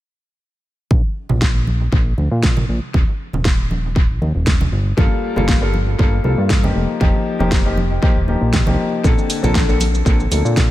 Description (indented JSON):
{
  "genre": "nu-disco, nu disco",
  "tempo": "118 BPM",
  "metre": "4/4",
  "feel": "swing 53% on 16ths",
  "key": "Bb major",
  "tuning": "A4 = 440 Hz",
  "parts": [
    { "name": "fat analog bass", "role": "bass", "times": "0.9-10.7 s", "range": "Eb1 to Bb2", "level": "-18 LUFS", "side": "equal", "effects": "none" },
    { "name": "electronic kick drum", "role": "drums", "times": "0.9-10.7 s", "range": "none", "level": "-16 LUFS", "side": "equal", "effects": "none" },
    { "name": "congas", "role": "percussion", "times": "0.9-10.7 s", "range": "none", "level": "-26 LUFS", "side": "right 2 dB", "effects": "analog delay" },
    { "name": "pop drum kit", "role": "drums", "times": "1.4-10.7 s", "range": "hi-hat, shaker, snare drum", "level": "-24 LUFS", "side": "equal", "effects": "analog delay" },
    { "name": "clear baby grand piano", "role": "accompaniment", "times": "5.0-10.7 s", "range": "D3 to A4", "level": "-20 LUFS", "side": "left 2 dB", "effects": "analog delay" }
  ],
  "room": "little or no reverb",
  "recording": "echo-heavy mix",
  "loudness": "-14 LUFS",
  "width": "side -15 dB against mid",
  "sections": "0.9-10.7 A section",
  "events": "none",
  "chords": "0.9 N.C.; 2.9 Eb5; 4.7 Gm9; 6.8 F9sus4; 9.0 Bbmaj9"
}